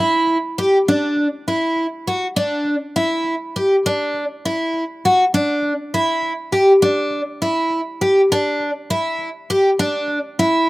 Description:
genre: progressive instrumental, progressive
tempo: 202 BPM (eighths)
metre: 5/8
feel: straight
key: unclear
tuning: A4 = 439 Hz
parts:
  - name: picked twelve-string acoustic guitar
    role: solo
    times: 0.0-10.7 s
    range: D4 to G4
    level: -16 LUFS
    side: equal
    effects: none
room: little or no reverb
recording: recorded outdoors, with no room sound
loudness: -16 LUFS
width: side -19 dB against mid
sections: 0.0-8.3 A section; 8.3-10.7 B section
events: none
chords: none

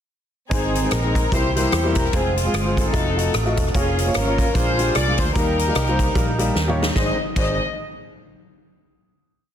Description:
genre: uptempo gospel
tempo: 149 BPM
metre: 4/4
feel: swing 58% on 8ths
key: Ab major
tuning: A4 = 440 Hz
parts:
  - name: warm studio string section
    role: melody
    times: 0.5-7.6 s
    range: Ab3 to Eb5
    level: -23 LUFS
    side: left 2 dB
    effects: none
  - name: warm upright piano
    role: accompaniment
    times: 0.5-7.6 s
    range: Ab1 to Eb5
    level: -26 LUFS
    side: left 2 dB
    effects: none
  - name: mellow accordion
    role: sustained chords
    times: 0.5-7.2 s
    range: Eb4 to C6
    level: -35 LUFS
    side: right 6 dB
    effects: none
  - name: percussive tonewheel organ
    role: sustained chords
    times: 0.5-7.2 s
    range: Eb3 to G5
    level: -32 LUFS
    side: right 3 dB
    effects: none
  - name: vintage muted fingered electric bass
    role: bass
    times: 0.5-7.6 s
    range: E1 to E2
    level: -24 LUFS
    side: equal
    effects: none
  - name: swinging big-band drum kit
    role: drums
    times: 0.5-7.5 s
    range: crash cymbal, hi-hat, kick drum, rim click, snare drum, toms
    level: -23 LUFS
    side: equal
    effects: soft clipping on snare
room: light reverb, studio ambience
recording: dense, heavily limited modern master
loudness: -18 LUFS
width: side -9 dB against mid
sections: 0.5-7.0 breakdown; 7.0-8.6 final chord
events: tonewheel organ fill 6.4-7.0; drum fill 6.6-7.0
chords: 0.5 Ab; 1.3 C7; 2.1 Fm; 2.9 F7b9; 3.7 Bbm/F; 4.5 Bb7; 5.4 Eb; 7.0 Ab

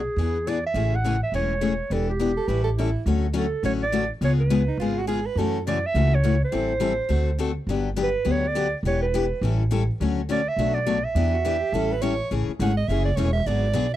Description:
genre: acoustic string swing (jazz manouche)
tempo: 208 BPM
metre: 4/4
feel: swing 59% on 8ths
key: A major, D major from 3.1 s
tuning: A4 = 440 Hz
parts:
  - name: warm clarinet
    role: melody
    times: 0.0-12.2 s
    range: G4 to F#5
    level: -26 LUFS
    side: right 4 dB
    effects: none
  - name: upright bass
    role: bass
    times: 0.0-14.0 s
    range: E1 to F#2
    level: -24 LUFS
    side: equal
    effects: none
  - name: picked steel-string acoustic guitar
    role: accompaniment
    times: 0.2-13.9 s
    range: B2 to A4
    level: -26 LUFS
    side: left 6 dB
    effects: none
  - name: clear soprano saxophone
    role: second line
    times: 2.4-5.6, 11.3-14.0 s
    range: Eb4 to F#5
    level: -28 LUFS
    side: right 6 dB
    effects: none
room: small room ambience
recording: dry, close 1970s-style studio recording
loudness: -21 LUFS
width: side -13 dB against mid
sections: 0.0-3.1 A section; 3.1-12.3 B section; 12.3-14.0 C section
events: soprano saxophone solo 12.3-14.0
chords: 0.2 E7; 0.8 Amaj7; 1.9 Em7; 2.5 A7; 3.1 Dmaj7; 4.2 C#7; 5.4 F#m7; 6.5 Am7; 7.1 D7; 7.7 Gmaj7; 8.8 Em7; 9.4 A7; 10.0 Dmaj7; 10.6 Bm7; 11.2 Em7; 11.7 A7; 12.3 Amaj7

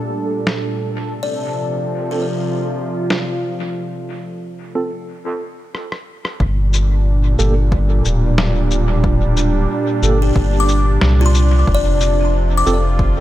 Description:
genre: ambient dub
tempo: 91 BPM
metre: 4/4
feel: swing 54% on 16ths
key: G minor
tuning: A4 = 440 Hz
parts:
  - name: warm analog pad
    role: sustained chords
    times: 0.0-13.2 s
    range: Bb2 to A4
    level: -21 LUFS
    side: right 2 dB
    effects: lush chorus
  - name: bubbling stepped-filter texture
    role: texture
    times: 0.0-5.1 s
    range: A4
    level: -29 LUFS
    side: right 3 dB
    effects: chorus, built-in reverb
  - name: electronic snare drum, rim click and shaker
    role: drums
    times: 0.5-12.8 s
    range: none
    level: -23 LUFS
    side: left 1 dB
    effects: dub echo
  - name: buzzing kalimba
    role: arpeggios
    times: 1.2-4.1, 10.2-13.2 s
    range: F4 to D6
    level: -22 LUFS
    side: left 4 dB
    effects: tape echo
  - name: mellow tine electric piano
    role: stabs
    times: 2.1-12.8 s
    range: Bb3 to A4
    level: -25 LUFS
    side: right 3 dB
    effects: medium tremolo, low-pass filter, dub echo
  - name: soft dub sub bass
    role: bass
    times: 6.4-13.2 s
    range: D1 to C2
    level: -15 LUFS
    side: equal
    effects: none
  - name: electronic kick drum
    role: drums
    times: 6.4-13.1 s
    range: none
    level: -19 LUFS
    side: equal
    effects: none
room: light reverb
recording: none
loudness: -15 LUFS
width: side -14 dB against mid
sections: 0.0-6.4 A section; 6.4-13.2 B section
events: drum fill 5.7-6.4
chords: 0.0 Gmadd9; 1.1 F; 6.4 Gm; 11.7 F5

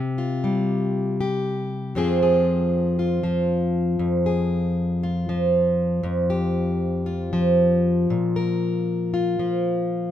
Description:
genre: folk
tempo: 117 BPM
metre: 4/4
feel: straight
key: F minor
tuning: A4 = 440 Hz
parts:
  - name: fingerpicked plugged-in steel-string acoustic guitar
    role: solo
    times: 0.0-10.1 s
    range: F2 to Bb4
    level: -20 LUFS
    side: equal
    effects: none
room: light reverb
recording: minimal, uncompressed stereo recording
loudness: -20 LUFS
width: side -10 dB against mid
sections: 0.0-2.0 A section; 2.0-10.1 B section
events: none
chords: 0.0 C5; 2.0 Fm; 6.0 Fsus2; 8.1 Bb5

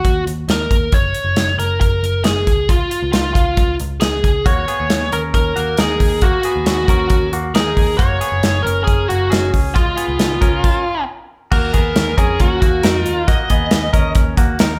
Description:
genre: jangly indie pop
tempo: 136 BPM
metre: 4/4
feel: straight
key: unclear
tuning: A4 = 440 Hz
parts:
  - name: biting lead guitar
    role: melody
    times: 0.0-14.1 s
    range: E#4 to D#5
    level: -21 LUFS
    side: equal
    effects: overdrive
  - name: vintage muted picked electric bass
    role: bass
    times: 0.0-14.8 s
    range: F#1 to E#2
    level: -24 LUFS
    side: equal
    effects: none
  - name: modern studio drum kit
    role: drums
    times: 0.0-14.7 s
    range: crash cymbal, hi-hat, kick drum, snare drum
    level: -18 LUFS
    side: equal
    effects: none
  - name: direct-recorded clean electric guitar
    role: arpeggios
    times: 4.5-14.8 s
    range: G#3 to A#4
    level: -26 LUFS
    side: equal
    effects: spring reverb
room: light reverb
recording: band playing live in one room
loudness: -16 LUFS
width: mono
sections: 0.0-11.5 A section; 11.5-14.8 B section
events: stop 10.6-11.5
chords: 0.0 D#5; 0.9 F#; 2.5 C#; 4.5 D#m7; 8.0 F#add9; 9.5 C#; 11.5 D#m7; 13.1 Bmaj7/D#

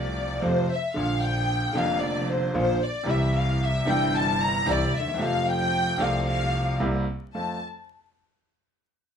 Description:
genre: tango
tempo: 113 BPM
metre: 4/4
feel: rubato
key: F major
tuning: A4 = 441 Hz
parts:
  - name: dark studio violin section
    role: second line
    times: 0.0-7.6 s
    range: C5 to Bb5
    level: -26 LUFS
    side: left 2 dB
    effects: none
  - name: bright grand piano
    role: accompaniment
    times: 0.0-7.6 s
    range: F1 to F4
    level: -26 LUFS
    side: right 1 dB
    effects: none
  - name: rich double bass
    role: bass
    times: 0.0-7.6 s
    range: F1 to F2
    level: -30 LUFS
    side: equal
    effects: none
room: wet studio reverb, RT60 0.7 s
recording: minimal, uncompressed stereo recording, vinyl crackle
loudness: -22 LUFS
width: side -7 dB against mid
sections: 0.0-7.4 A section; 7.4-9.2 B section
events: violin section solo 0.0-7.4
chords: 0.0 F; 1.0 Bb; 3.1 C; 5.2 F; 6.8 C7; 7.4 F

